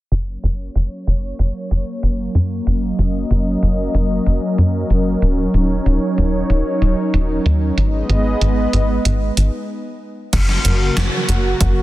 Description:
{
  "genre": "synthwave",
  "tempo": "94 BPM",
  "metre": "4/4",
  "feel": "straight",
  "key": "F# major",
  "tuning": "A4 = 440 Hz",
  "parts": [
    { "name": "warm analog pad", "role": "sustained chords", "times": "0.1-11.8 s", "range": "C#3 to D#5", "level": "-20 LUFS", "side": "equal", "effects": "chorus, sidechain pumping" },
    { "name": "tight sequencer bass", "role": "bass", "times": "0.1-11.7 s", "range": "D#1 to F#2", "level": "-17 LUFS", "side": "equal", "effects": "none" },
    { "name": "gated 80s digital drum machine", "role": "drums", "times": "0.1-11.7 s", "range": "crash cymbal, hi-hat, snare drum", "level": "-23 LUFS", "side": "right 1 dB", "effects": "gated reverb, gated reverb snare, overdrive, low-pass filter on hats, low-pass filter on cymbals, low-pass filter on snare, low-pass filter on room" },
    { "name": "electronic kick drum", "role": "drums", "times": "10.3-11.7 s", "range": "none", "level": "-17 LUFS", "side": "equal", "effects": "none" }
  ],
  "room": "light reverb",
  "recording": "dense, heavily limited modern master, low-pass filter",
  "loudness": "-15 LUFS",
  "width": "side -16 dB against mid",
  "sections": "0.1-10.3 A section; 10.3-11.8 B section",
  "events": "filter sweep on drum 0.1-10.3; filter sweep on analog synth bass 0.1-10.3; filter sweep on analog synth pad 0.1-10.3; filter sweep 0.1-10.3; stop 9.7-10.3",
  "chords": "0.1 F#; 5.2 D#m7; 7.8 G#m; 10.3 F#"
}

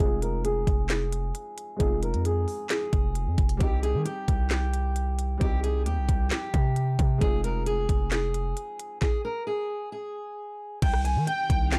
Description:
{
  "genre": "hip hop, trap",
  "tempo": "133 BPM",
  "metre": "4/4",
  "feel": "half-time",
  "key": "unclear",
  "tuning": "A4 = 440 Hz",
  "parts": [
    { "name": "fingerpicked steel-string acoustic guitar", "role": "melody", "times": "0.0-11.8 s", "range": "G4 to Ab5", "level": "-34 LUFS", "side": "equal", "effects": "low-pass filter" },
    { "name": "felt-muted upright piano", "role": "accompaniment", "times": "0.0-9.0 s", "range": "G3 to G4", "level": "-40 LUFS", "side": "equal", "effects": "low-pass filter" },
    { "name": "distorted 808-style bass", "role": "bass", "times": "0.0-11.8 s", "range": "F1 to Eb3", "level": "-30 LUFS", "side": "equal", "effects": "distortion" },
    { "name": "trap drum kit", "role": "drums", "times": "0.0-11.8 s", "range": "crash cymbal, handclaps, hi-hat, kick drum, rim click, snare drum", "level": "-29 LUFS", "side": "equal", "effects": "none" },
    { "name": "deep dark ambient pad", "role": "sustained chords", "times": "11.4-11.8 s", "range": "Eb3 to G4", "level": "-42 LUFS", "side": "equal", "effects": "none" },
    { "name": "warm symphonic violin section", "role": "second line", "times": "11.3-11.8 s", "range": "F5 to G5", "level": "-36 LUFS", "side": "equal", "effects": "delay" }
  ],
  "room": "studio reverb",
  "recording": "dark, warm production",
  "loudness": "-27 LUFS",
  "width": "mono",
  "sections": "0.0-10.8 A section",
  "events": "filter sweep 0.0-3.6; stop 9.0-10.8",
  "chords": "0.0 Fm7; 3.6 Cm; 7.2 Fm7; 10.8 Cm"
}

